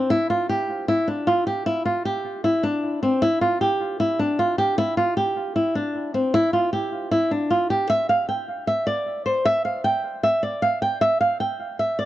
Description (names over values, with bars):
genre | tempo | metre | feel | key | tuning
hip hop | 154 BPM | 4/4 | half-time | unclear | A4 = 440 Hz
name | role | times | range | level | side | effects
flamenco guitar | solo | 0.0-12.1 s | C4 to G5 | -20 LUFS | equal | low-pass filter, analog delay
room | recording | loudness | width
small room ambience | dry, gritty hardware recording | -20 LUFS | side -14 dB against mid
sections
0.0-7.9 A section; 7.9-12.1 B section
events
none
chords
none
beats
| 0.10 0.49 0.88 1.27 | 1.66 2.05 2.44 2.83 | 3.22 3.61 4.00 4.39 | 4.78 5.17 5.56 5.95 | 6.34 6.73 7.12 7.51 | 7.90 8.29 8.68 9.06 | 9.45 9.84 10.23 10.62 | 11.01 11.40 11.79